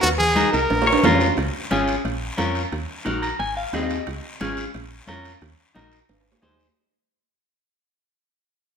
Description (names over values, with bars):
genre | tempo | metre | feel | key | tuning
latin, cumbia | 178 BPM | 4/4 | straight | Bb minor | A4 = 438 Hz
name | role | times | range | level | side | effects
clear trumpet | melody | 0.0-1.2 s | Gb4 to Bb4 | -20 LUFS | equal | none
woody FM bass | bass | 0.0-6.7 s | Ab1 to F2 | -28 LUFS | equal | none
congas | percussion | 0.0-6.6 s | none | -30 LUFS | left 3 dB | none
cowbell and timbales | percussion | 0.0-6.7 s | none | -27 LUFS | right 4 dB | none
guiro | percussion | 0.0-6.8 s | none | -34 LUFS | left 2 dB | none
clean electric guitar | accompaniment | 0.4-6.7 s | C4 to Bb5 | -25 LUFS | equal | none
clean electric guitar | second line | 0.9-1.4 s | F4 to Db5 | -22 LUFS | left 2 dB | none
room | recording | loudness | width
wet large studio reverb, RT60 1.2 s | minimal, uncompressed stereo recording | -19 LUFS | side -7 dB against mid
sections
0.0-1.4 A section; 1.4-6.8 B section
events
drum fill 0.7-1.4, 6.1-6.8; fade-out 1.4-6.8; clean electric guitar fill 3.1-4.1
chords
0.0 Ebm; 0.7 Bbm; 1.4 Db; 2.0 Bbm; 2.7 Ebm; 3.4 Ab; 4.1 Db; 4.7 Bbm; 5.4 Ebm; 6.1 Ab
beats
| 0.03 0.36 0.70 1.04 | 1.37 1.71 2.05 2.38 | 2.72 3.06 3.39 3.73 | 4.07 4.40 4.74 5.08 | 5.41 5.75 6.09 6.43